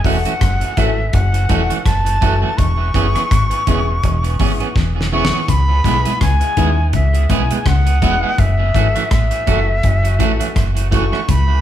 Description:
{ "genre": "roots reggae", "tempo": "83 BPM", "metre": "4/4", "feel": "swing 57% on 16ths", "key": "unclear", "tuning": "A4 = 440 Hz", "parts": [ { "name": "bright reedy jazz flute", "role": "melody", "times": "0.0-11.6 s", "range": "E5 to C#6", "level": "-21 LUFS", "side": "left 1 dB", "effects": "none" }, { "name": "electric guitar at the edge of break-up", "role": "accompaniment", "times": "0.0-11.2 s", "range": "E3 to G#4", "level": "-22 LUFS", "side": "right 6 dB", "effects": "dub echo" }, { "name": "mellow electric guitar", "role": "riff", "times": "0.0-11.5 s", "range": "E2 to D#3", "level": "-24 LUFS", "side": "left 6 dB", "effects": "none" }, { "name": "warm upright piano", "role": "stabs", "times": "0.0-11.1 s", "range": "C#4 to B4", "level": "-26 LUFS", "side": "left 7 dB", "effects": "none" }, { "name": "deep dub fingered electric bass", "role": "bass", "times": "0.0-11.6 s", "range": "E1 to D#2", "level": "-17 LUFS", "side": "equal", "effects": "none" }, { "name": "damped 70s drum kit", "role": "drums", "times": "0.0-11.5 s", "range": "hi-hat, kick drum, rim click, snare drum", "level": "-19 LUFS", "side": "equal", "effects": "none" } ], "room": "moderate large studio reverb, RT60 0.8 s", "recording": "band playing live in one room", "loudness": "-13 LUFS", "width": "side -11 dB against mid", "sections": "0.0-5.5 A section; 5.5-11.6 B section", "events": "drum fill 4.8-5.5", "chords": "0.0 F#m7; 2.6 E6; 5.5 C#m7; 8.4 F#m7", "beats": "0.41 1.14 1.86 | 2.59 3.31 4.04 4.76 | 5.49 6.21 6.94 7.66 | 8.39 9.11 9.84 10.56 | 11.29" }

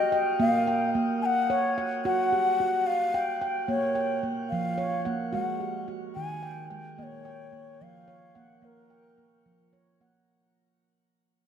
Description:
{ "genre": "world meditative, meditative tuned percussion", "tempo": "73 BPM (dotted quarters)", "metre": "6/8", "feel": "straight", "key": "unclear", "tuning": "A4 = 440 Hz", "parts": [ { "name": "breathy bright bansuri", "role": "melody", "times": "0.0-9.7 s", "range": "Bb4 to Ab5", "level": "-28 LUFS", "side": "left 3 dB", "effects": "shimmer reverb, diffuse ambient delay" }, { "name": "handpan", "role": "arpeggios", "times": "0.0-10.6 s", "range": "Eb3 to G5", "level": "-29 LUFS", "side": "right 3 dB", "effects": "shimmer reverb" } ], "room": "wet echo chamber reverb, RT60 1.6 s, small room ambience", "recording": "none", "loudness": "-25 LUFS", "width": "side -8 dB against mid", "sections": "0.0-10.3 A section", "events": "fade-out 0.0-10.3", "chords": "0.4 Bbm; 2.0 Fsus2; 3.7 Bbm; 5.3 Ab5; 7.0 Bbm", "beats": "| 0.40 1.22 | 2.04 2.86 | 3.69 4.51 | 5.33 6.15 | 6.98 7.80 | 8.63 9.45" }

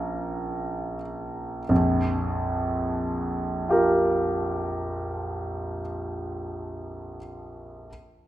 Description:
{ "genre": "classical, impressionist solo piano", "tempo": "30 BPM (dotted quarters)", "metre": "6/8", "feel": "rubato", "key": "Bb minor", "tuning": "A4 = 439 Hz", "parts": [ { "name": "clear concert grand piano", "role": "solo", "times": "0.0-7.9 s", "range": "Bb1 to Bb5", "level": "-25 LUFS", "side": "right 1 dB", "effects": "none" } ], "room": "wet recital hall reverb, RT60 1.5 s", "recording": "recorded in a church or concert hall", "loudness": "-25 LUFS", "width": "side -14 dB against mid", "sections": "0.0-1.7 A section; 1.7-5.7 B section", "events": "slowing down 0.0-1.7", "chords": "0.0 Bbmadd9; 1.7 Bb5", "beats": "| 1.69 3.68" }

